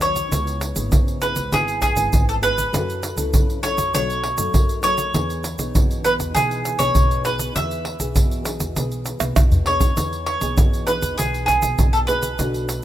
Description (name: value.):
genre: samba and choro.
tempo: 99 BPM.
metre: 4/4.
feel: straight.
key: E major.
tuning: A4 = 440 Hz.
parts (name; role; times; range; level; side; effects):
bowl-back mandolin; melody; 0.0-12.8 s; G#4 to E5; -22 LUFS; right 1 dB; none.
nylon-string guitar; accompaniment; 0.0-12.8 s; F#2 to A4; -30 LUFS; left 2 dB; none.
upright bass; bass; 0.0-12.8 s; G#1 to F#3; -28 LUFS; equal; none.
egg shaker, pandeiro, surdo and tamborim; percussion; 0.0-12.8 s; none; -20 LUFS; equal; none.
room: little or no reverb.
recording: rough home demo mix.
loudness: -18 LUFS.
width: side -12 dB against mid.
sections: 0.0-10.0 A section; 10.0-12.8 A section.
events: drum fill 9.2-10.0.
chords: 0.3 C#m7; 2.7 F#m7; 3.9 B7; 5.1 Emaj7.